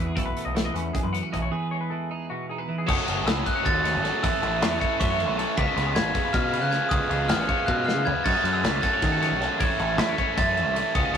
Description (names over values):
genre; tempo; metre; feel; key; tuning
math rock and midwest emo; 312 BPM (eighths); 7/8; straight; unclear; A4 = 440 Hz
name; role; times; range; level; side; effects
twelve-string electric guitar; accompaniment; 0.0-2.9 s; E2 to G#4; -30 LUFS; right 3 dB; none
twangy electric guitar; arpeggios; 0.0-11.2 s; F#4 to F#5; -32 LUFS; left 5 dB; none
growling picked electric bass; bass; 0.0-11.2 s; F#1 to D#3; -29 LUFS; equal; overdrive
loose indie drum kit; drums; 0.2-11.2 s; crash cymbal, hi-hat, kick drum, ride cymbal, snare drum, toms; -27 LUFS; equal; none
glockenspiel with brass mallets; melody; 2.9-11.2 s; C#6 to B6; -26 LUFS; equal; none
biting overdriven guitar; riff; 2.9-11.2 s; A2 to F#4; -27 LUFS; right 2 dB; none
room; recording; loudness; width
light reverb; rough rehearsal-room recording; -22 LUFS; side -8 dB against mid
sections
0.0-2.9 A section; 2.9-11.2 B section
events
break 1.5-2.9; drum fill 7.7-8.3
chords
0.2 B9sus4; 1.5 Emaj7; 2.9 F#madd9; 4.2 A; 5.6 C#7; 8.3 F#madd9; 9.6 Amaj7